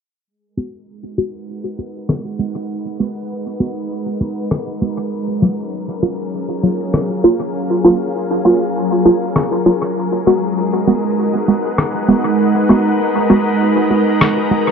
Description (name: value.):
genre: ambient dub.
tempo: 99 BPM.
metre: 4/4.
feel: swing 55% on 16ths.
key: G# dorian.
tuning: A4 = 441 Hz.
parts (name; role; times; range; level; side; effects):
soft additive organ-like pad; sustained chords; 1.0-14.7 s; F#3 to F#5; -18 LUFS; equal; ensemble chorus, built-in reverb.
filtered dub chord stab; stabs; 0.6-14.7 s; F#3 to F#4; -16 LUFS; right 1 dB; phaser, dub echo.
electronic rim click; drums; 2.1-14.3 s; none; -19 LUFS; left 1 dB; dub echo.
room: light reverb.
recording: dark, warm production, low-pass filter.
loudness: -14 LUFS.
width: side -6 dB against mid.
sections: 0.3-14.7 A section.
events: fade-in on ambient pad 0.3-14.7; filter sweep on synth stab 0.3-14.7; filter sweep 0.3-14.7.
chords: 0.3 G#m7; 5.1 F#maj7; 10.0 G#m7.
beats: | 0.27 0.88 1.49 2.09 | 2.70 3.30 3.91 4.51 | 5.12 5.73 6.33 6.94 | 7.54 8.15 8.76 9.36 | 9.97 10.58 11.18 11.79 | 12.39 13.00 13.61 14.21.